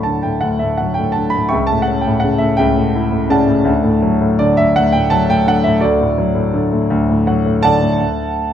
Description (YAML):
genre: classical, lyrical solo piano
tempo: 56 BPM (dotted quarters)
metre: 6/8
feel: rubato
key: D major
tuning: A4 = 440 Hz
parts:
  - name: warm grand piano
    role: solo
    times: 0.0-8.5 s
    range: C#2 to C#6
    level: -13 LUFS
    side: equal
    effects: none
room: moderate recital hall reverb, RT60 1.4 s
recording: dark, warm production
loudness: -13 LUFS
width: side -9 dB against mid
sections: 0.0-8.0 A section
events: grand piano fill 6.9-8.0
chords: 0.0 D; 1.5 A7/C#; 3.7 D